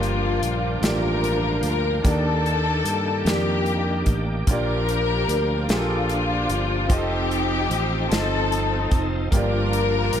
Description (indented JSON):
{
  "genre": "slow gospel",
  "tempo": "50 BPM (dotted quarters)",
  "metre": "6/8",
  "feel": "straight",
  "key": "Bb major",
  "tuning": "A4 = 442 Hz",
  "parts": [
    { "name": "warm studio string section", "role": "melody", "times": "0.0-10.2 s", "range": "Bb3 to Bb4", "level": "-24 LUFS", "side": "left 3 dB", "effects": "slapback echo" },
    { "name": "clear concert grand piano", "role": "accompaniment", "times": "0.0-10.2 s", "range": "G2 to Eb5", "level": "-28 LUFS", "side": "right 1 dB", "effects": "none" },
    { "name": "bright tonewheel organ", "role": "sustained chords", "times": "0.0-10.2 s", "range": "Eb3 to A4", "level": "-31 LUFS", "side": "right 3 dB", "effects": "slow rotary speaker, overdrive, chorus vibrato" },
    { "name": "fingered electric bass", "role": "bass", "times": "0.0-10.2 s", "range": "F1 to G2", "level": "-25 LUFS", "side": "equal", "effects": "none" },
    { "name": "natural country drum kit", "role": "drums", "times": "0.0-10.2 s", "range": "hi-hat, kick drum, snare drum", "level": "-24 LUFS", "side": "equal", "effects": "none" }
  ],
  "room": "light reverb",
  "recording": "none",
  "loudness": "-20 LUFS",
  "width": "side -9 dB against mid",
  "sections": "0.0-10.2 A section",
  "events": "none",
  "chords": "0.0 Gm7; 2.1 Ebmaj7; 4.5 Bb6; 6.9 F7; 9.3 Gm7"
}